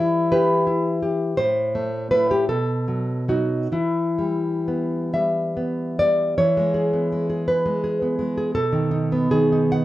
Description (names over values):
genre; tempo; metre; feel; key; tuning
romantic piece for solo classical guitar; 40-58 BPM (dotted quarters); 6/8; rubato; E minor, E major from 6.4 s; A4 = 445 Hz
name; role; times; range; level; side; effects
nylon-string guitar; solo; 0.0-9.8 s; A2 to F#5; -19 LUFS; equal; none
room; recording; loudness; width
wet studio reverb, RT60 0.6 s; worn, warbling old tape, cassette tape, warbly pitch drift; -19 LUFS; side -15 dB against mid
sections
0.0-6.4 A section; 6.4-9.8 B section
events
none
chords
0.0 Em; 1.4 Am; 2.5 B7; 3.7 Em; 6.4 E; 8.6 B7